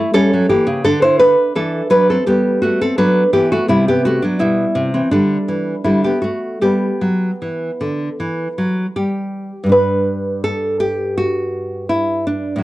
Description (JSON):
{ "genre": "classical, baroque-style dance for nylon-string guitar", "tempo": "75-87 BPM", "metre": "4/4", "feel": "rubato", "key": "G major", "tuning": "A4 = 441 Hz", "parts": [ { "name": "nylon-string guitar", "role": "solo", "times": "0.0-12.6 s", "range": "G2 to C5", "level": "-14 LUFS", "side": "equal", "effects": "none" } ], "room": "wet small room reverb, RT60 0.5 s", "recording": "worn, warbling old tape, cassette tape, warbly pitch drift", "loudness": "-14 LUFS", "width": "side -17 dB against mid", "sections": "0.0-9.7 A section; 9.7-12.6 B section", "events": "none", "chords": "0.0 C#dim7; 0.8 D; 2.3 G; 3.7 C; 5.1 G5/D; 5.8 D; 6.6 G" }